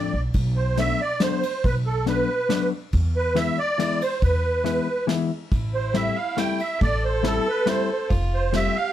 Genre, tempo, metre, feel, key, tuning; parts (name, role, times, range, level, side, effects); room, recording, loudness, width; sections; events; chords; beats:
musette waltz; 139 BPM; 3/4; straight; A minor; A4 = 440 Hz
musette accordion; melody; 0.0-8.9 s; A4 to G5; -24 LUFS; right 3 dB
hollow-body jazz guitar; accompaniment; 0.0-8.8 s; E3 to F4; -26 LUFS; left 7 dB
upright bass; bass; 0.0-8.7 s; F1 to E2; -24 LUFS; equal
soft brush drum kit; drums; 0.3-8.6 s; kick drum, ride cymbal, snare drum; -28 LUFS; equal
rich violin; second line; 5.5-8.9 s; E4 to A4; -30 LUFS; left 1 dB
moderate studio reverb, RT60 0.6 s; dark, warm production; -20 LUFS; side -12 dB against mid
0.0-8.9 A section
0.3 Bm7; 2.9 E; 5.5 Am7; 8.1 Fadd9
| 0.34 0.78 1.21 | 1.64 2.07 2.50 | 2.93 3.36 3.79 | 4.22 4.65 5.09 | 5.52 5.95 6.39 | 6.82 7.25 7.68 | 8.11 8.54